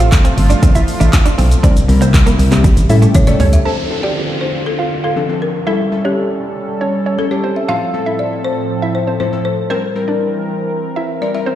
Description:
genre	dance-pop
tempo	119 BPM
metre	4/4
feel	straight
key	D minor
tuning	A4 = 441 Hz
part	hollow square pluck	melody	0.0-11.6 s	C4 to A5	-23 LUFS	right 2 dB	chorus, sidechain pumping, tape echo
part	glassy digital keys	accompaniment	0.0-11.6 s	A2 to Bb4	-20 LUFS	left 4 dB	chorus
part	lush unison pad	sustained chords	0.0-11.6 s	A2 to Bb4	-21 LUFS	right 1 dB	chorus, sidechain pumping
part	direct-recorded clean electric guitar	riff	0.0-3.5 s	G3 to D4	-22 LUFS	right 5 dB	ensemble chorus
part	solid FM bass	bass	0.0-3.6 s	G1 to A2	-11 LUFS	equal	sidechain pumping
part	deep house drum kit	drums	0.0-3.6 s	handclaps, hi-hat, kick drum, shaker, toms	-12 LUFS	equal	none
part	egg shaker	percussion	0.1-3.6 s	none	-35 LUFS	left 9 dB	none
part	folk marimba with medium hard mallets	melody	3.2-11.6 s	G4 to F5	-22 LUFS	left 4 dB	none
part	downlifter	sound effects	3.7-7.7 s	none	-26 LUFS	right 1 dB	none
room	light reverb, digital ambience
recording	played on a big sound system in a bare room, stone room reverb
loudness	-12 LUFS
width	side -12 dB against mid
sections	0.0-3.7 A section; 3.7-11.6 B section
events	drop 0.0-3.7; drum fill 3.1-3.7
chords	0.0 Fmaj7; 1.6 C7; 2.6 A7; 3.7 Dm7; 5.7 A7; 7.7 Fmaj7/A; 9.7 C7

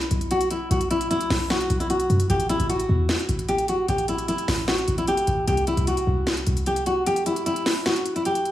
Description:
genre	hip hop, trap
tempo	151 BPM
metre	4/4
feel	half-time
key	unclear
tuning	A4 = 440 Hz
part	nylon-string guitar	melody	0.0-8.5 s	E4 to G4	-23 LUFS	equal	digital delay
part	short 808-style bass	bass	0.0-7.0 s	G1 to F#2	-25 LUFS	equal	none
part	trap drum kit	drums	0.0-8.5 s	hi-hat, snare drum	-28 LUFS	equal	none
room	light reverb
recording	small room reverb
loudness	-21 LUFS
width	side -13 dB against mid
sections	0.0-8.5 A section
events	kick muted 7.1-8.5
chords	0.0 Bsus4; 2.3 A5; 5.5 C

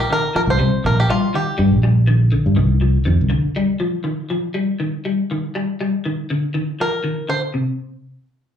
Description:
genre	afrobeat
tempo	121 BPM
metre	4/4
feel	straight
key	C minor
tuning	A4 = 440 Hz
part	bluegrass banjo	melody	0.0-1.8, 6.8-7.4 s	F4 to C5	-20 LUFS	right 1 dB	slapback echo
part	semi-hollow electric guitar	arpeggios	0.1-7.7 s	C3 to G3	-21 LUFS	left 2 dB	ensemble chorus, slapback echo
part	fingered electric bass	bass	0.4-3.5 s	Bb1 to C3	-15 LUFS	equal	none
room	moderate club reverb, RT60 0.5 s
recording	live gig heard through the venue's PA, club reverb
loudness	-16 LUFS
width	side -8 dB against mid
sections	0.0-7.5 A section; 7.5-8.6 B section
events	none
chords	0.0 Cm7; 7.5 N.C.

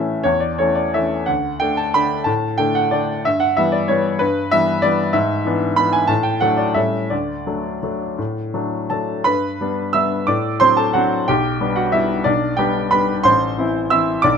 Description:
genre	classical, piano waltz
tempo	160-196 BPM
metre	3/4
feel	rubato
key	D major, G major from 9.3 s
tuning	A4 = 440 Hz
part	clear baby grand piano	solo	0.0-14.4 s	A1 to E6	-16 LUFS	equal	none
room	light reverb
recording	minimal, uncompressed stereo recording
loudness	-16 LUFS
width	side -6 dB against mid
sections	0.0-9.3 A section; 9.3-14.4 B section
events	none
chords	0.0 A; 1.3 D; 3.2 Em/G; 5.1 E7/G#; 6.1 D/A; 6.8 A7; 7.1 D; 9.3 G; 10.3 D7/A; 11.3 G/B; 13.3 Am

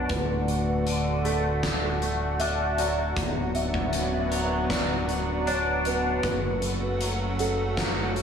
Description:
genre	post-rock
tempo	78 BPM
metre	4/4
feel	straight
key	B minor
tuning	A4 = 440 Hz
part	lush unison pad	sustained chords	0.0-8.2 s	C#3 to F#4	-31 LUFS	right 2 dB	chorus
part	felt-muted upright piano	arpeggios	0.0-8.2 s	A4 to E5	-32 LUFS	right 1 dB	digital delay, slapback echo
part	twangy electric guitar	arpeggios	0.0-8.2 s	B1 to D4	-29 LUFS	left 2 dB	ensemble chorus, digital delay, slapback echo
part	growling fingered electric bass	bass	0.0-8.2 s	D1 to F#1	-31 LUFS	equal	overdrive
part	huge arena drum kit	drums	0.1-8.2 s	hi-hat, kick drum, snare drum	-31 LUFS	equal	none
room	wet lush hall reverb, RT60 2.0 s, small room ambience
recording	big arena sound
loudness	-24 LUFS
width	side -7 dB against mid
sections	0.0-8.2 A section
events	none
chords	0.1 D; 3.2 Bm/D; 6.2 F#m

